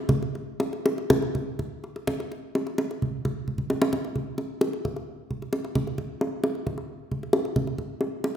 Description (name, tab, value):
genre	gamelan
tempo	118-132 BPM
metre	4/4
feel	straight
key	none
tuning	none
part	kendang	percussion	0.1-8.3 s	none	-26 LUFS	equal	none
room	wet recital hall reverb, RT60 1.4 s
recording	minimal, uncompressed stereo recording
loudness	-26 LUFS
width	side -9 dB against mid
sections	0.0-3.9 A section; 3.9-8.4 B section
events	drum fill 3.5-3.9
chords	none